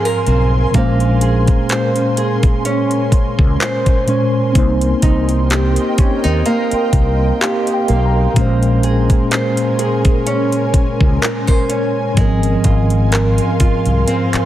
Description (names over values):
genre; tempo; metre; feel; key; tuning
contemporary R&B; 63 BPM; 4/4; swing 54% on 16ths; Bb dorian; A4 = 440 Hz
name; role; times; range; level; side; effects
mellow tine electric piano; accompaniment; 0.0-14.5 s; Ab2 to Bb5; -18 LUFS; equal; medium stereo tremolo
ethereal airy pad; sustained chords; 0.0-14.5 s; Db4 to C6; -23 LUFS; equal; ensemble chorus, built-in reverb, tremolo, sidechain pumping
nylon-string guitar; arpeggios; 0.0-14.5 s; Ab3 to C5; -20 LUFS; right 2 dB; tape echo
smooth R&B drum kit; drums; 0.1-14.5 s; handclaps, hi-hat, kick drum; -16 LUFS; equal; none
mellow fretless electric bass; bass; 0.3-14.4 s; Ab1 to Eb2; -16 LUFS; equal; lush chorus
room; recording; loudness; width
digital ambience; heavily compressed radio sound; -12 LUFS; side -13 dB against mid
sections
0.0-14.5 A section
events
break 0.0-0.7; tine electric piano fill 6.9-8.4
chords
0.0 Ab69; 0.7 Bbm9; 4.6 Cm7; 8.4 Bbm9; 12.2 Ab69